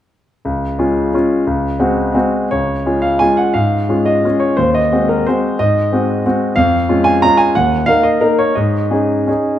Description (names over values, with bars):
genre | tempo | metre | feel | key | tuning
classical, piano waltz | 160-191 BPM | 3/4 | rubato | Db major | A4 = 437 Hz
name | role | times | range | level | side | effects
clear concert grand piano | solo | 0.4-9.6 s | Db2 to Bb5 | -12 LUFS | equal | none
room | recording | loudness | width
moderate recital hall reverb, RT60 1.6 s | dark, warm production | -12 LUFS | side -11 dB against mid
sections
0.5-2.5 A section; 2.5-9.6 B section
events
none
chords
0.5 Db; 1.5 Ab7/Db; 2.5 Db; 4.6 Ab7/Eb; 6.6 Db/F; 7.6 Ebm; 8.6 Absus4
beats
| 0.45 0.79 1.14 | 1.46 1.79 2.14 | 2.51 2.85 3.20 | 3.55 3.89 4.24 | 4.57 4.91 5.25 | 5.59 5.91 6.25 | 6.57 6.89 7.23 | 7.56 7.88 8.22 | 8.56 8.91 9.28